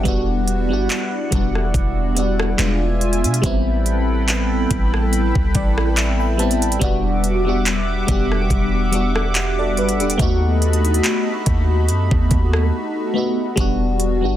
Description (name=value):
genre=contemporary R&B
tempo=71 BPM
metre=4/4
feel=swing 54% on 16ths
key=E minor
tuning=A4 = 441 Hz
part: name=FM electric piano with soft pad layer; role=accompaniment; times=0.0-14.4 s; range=G3 to A5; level=-21 LUFS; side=left 1 dB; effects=chorus, phaser
part: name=chorused pulse-width pad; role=sustained chords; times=0.0-13.5 s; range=G3 to D6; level=-26 LUFS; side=equal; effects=none
part: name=warm 808-style bass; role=bass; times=0.0-14.4 s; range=E1 to B2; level=-20 LUFS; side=equal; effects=none
part: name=trap drum kit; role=drums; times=0.1-14.2 s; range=handclaps, hi-hat, kick drum, rim click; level=-21 LUFS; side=equal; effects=overdrive
room=little or no reverb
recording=dense, heavily limited modern master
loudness=-16 LUFS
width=side -12 dB against mid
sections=0.1-13.6 A section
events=FM electric piano fill 5.1-6.8; break 12.7-13.6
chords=0.1 Em9; 2.6 E7b9; 3.4 Am9; 6.8 Em9; 10.2 B7/D#; 13.6 Em9